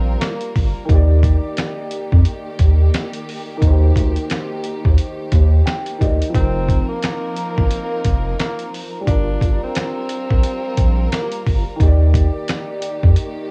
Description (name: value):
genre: hip hop, boom-bap hip-hop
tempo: 88 BPM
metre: 4/4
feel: swing 60% on 16ths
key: unclear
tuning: A4 = 440 Hz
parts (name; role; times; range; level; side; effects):
- breathy tenor saxophone; melody; 0.0-0.5, 6.4-11.4 s; Bb3 to D4; -29 LUFS; equal; high-pass filter, low-pass filter, analog delay
- dark baby grand piano; accompaniment; 0.0-13.5 s; Eb3 to G5; -29 LUFS; equal; cassette tape, high-pass filter, low-pass filter
- warm studio string section; sustained chords; 0.0-13.5 s; Eb3 to Bb4; -33 LUFS; equal; high-pass filter, low-pass filter, cassette tape
- round analog bass; bass; 0.0-13.2 s; F1 to F2; -17 LUFS; equal; none
- dusty soul sampler-style drum kit; drums; 0.2-13.4 s; hi-hat, kick drum, snare drum; -21 LUFS; equal; vintage 12-bit sampler grit
room: studio ambience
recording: home recording on cassette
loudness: -17 LUFS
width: mono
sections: 0.0-13.5 A section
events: none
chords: 0.0 Gm7; 0.9 Ebmaj7; 6.3 F7sus4; 9.1 Gm7; 11.8 Ebmaj7